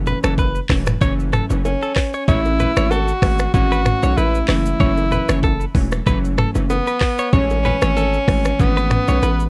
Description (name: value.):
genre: afrobeats.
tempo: 95 BPM.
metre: 4/4.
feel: swing 55% on 16ths.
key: A major.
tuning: A4 = 440 Hz.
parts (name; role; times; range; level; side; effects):
glassy digital keys; accompaniment; 0.0-9.5 s; E3 to C#4; -26 LUFS; equal; chorus.
hard-hitting 808-style bass; bass; 0.0-9.5 s; E1 to B1; -22 LUFS; equal; none.
direct-recorded clean electric guitar; riff; 0.1-9.4 s; A4 to C#5; -27 LUFS; equal; vibrato effect, tape echo.
afro-pop drum kit; drums; 0.1-9.5 s; finger snaps, handclaps, hi-hat, kick drum, rim click, shaker, toms; -22 LUFS; equal; none.
bongos and congas; percussion; 0.1-9.4 s; none; -29 LUFS; equal; none.
warm tenor saxophone; melody; 1.7-9.5 s; B3 to F#4; -23 LUFS; equal; none.
room: light reverb.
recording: worn, warbling old tape, cassette tape, warbly pitch drift.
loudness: -18 LUFS.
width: mono.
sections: 0.0-9.5 A section.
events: none.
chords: 0.0 F#m7; 2.3 Amaj7; 4.5 F#m7; 7.3 Amaj7.